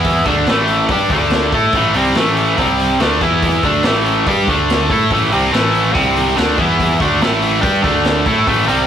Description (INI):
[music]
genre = garage rock duo or trio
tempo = 142 BPM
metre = 4/4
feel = straight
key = unclear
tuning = A4 = 440 Hz
[part]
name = biting overdriven guitar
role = riff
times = 0.0-8.9 s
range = A2 to A4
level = -13 LUFS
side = equal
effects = none
[part]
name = growling picked electric bass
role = bass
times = 0.0-8.9 s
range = A1 to A2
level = -21 LUFS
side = equal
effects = overdrive, tube saturation
[part]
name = raw garage drum kit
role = drums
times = 0.0-8.8 s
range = hi-hat, kick drum, snare drum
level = -20 LUFS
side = equal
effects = none
[sound]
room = moderate studio reverb, RT60 0.5 s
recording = rough rehearsal-room recording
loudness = -12 LUFS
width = side -9 dB against mid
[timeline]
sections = 0.0-8.9 A section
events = none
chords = 0.3 A5; 1.1 D5; 1.5 A5; 2.6 C5; 3.0 D5; 3.2 E5; 3.6 A5; 4.5 D5; 4.9 A5; 5.9 C5; 6.4 D5; 6.6 E5; 7.0 A5; 7.8 D5; 8.3 A5